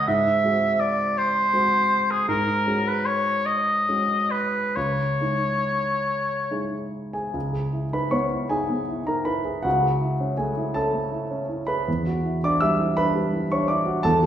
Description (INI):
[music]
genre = classical, impressionist duo for oboe and grand piano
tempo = 44-57 BPM (dotted quarters)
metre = 6/8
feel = rubato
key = unclear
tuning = A4 = 439 Hz
[part]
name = clear oboe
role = melody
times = 0.0-6.9 s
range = G#4 to E5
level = -21 LUFS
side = equal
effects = none
[part]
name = warm grand piano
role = accompaniment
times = 0.0-14.3 s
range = C#2 to E6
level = -23 LUFS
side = right 1 dB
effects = none
[sound]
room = wet recital hall reverb, RT60 1.3 s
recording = heard from further back in the room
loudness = -21 LUFS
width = side -10 dB against mid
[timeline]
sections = 0.0-7.3 A section; 7.3-14.3 B section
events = none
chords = 0.1 G#aug7; 2.3 G#7sus4; 4.8 C#madd9; 7.3 C#m9; 9.7 Amaj7/C#; 11.9 Em9